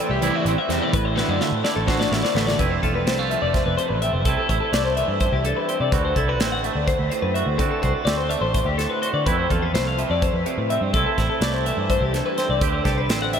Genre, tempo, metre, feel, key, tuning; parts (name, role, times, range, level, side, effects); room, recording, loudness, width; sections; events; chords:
math rock and midwest emo; 252 BPM (eighths); 7/8; straight; A4 = 440 Hz
twangy electric guitar; accompaniment; 0.0-13.4 s; E2 to G4; -26 LUFS; right 7 dB
twelve-string electric guitar; arpeggios; 0.0-13.4 s; G4 to F#5; -23 LUFS; left 4 dB; lush chorus, analog delay
picked electric bass; bass; 0.1-13.4 s; E1 to D3; -25 LUFS; equal
crunchy overdriven guitar; riff; 0.2-2.6 s; D3 to F#4; -28 LUFS; equal
modern studio drum kit; drums; 0.2-13.4 s; hi-hat, kick drum, snare drum; -26 LUFS; equal
wet huge ambient reverb, RT60 8.7 s; dreamy mix soaked in reverb; -19 LUFS; side -7 dB against mid
0.0-2.6 A section; 2.6-13.4 B section
drum fill 1.2-2.6
0.0 Am7; 0.9 Dadd9/A; 2.6 Fmaj7; 4.3 C6; 5.9 D7; 9.3 Fmaj7; 10.9 C6; 12.6 D7sus4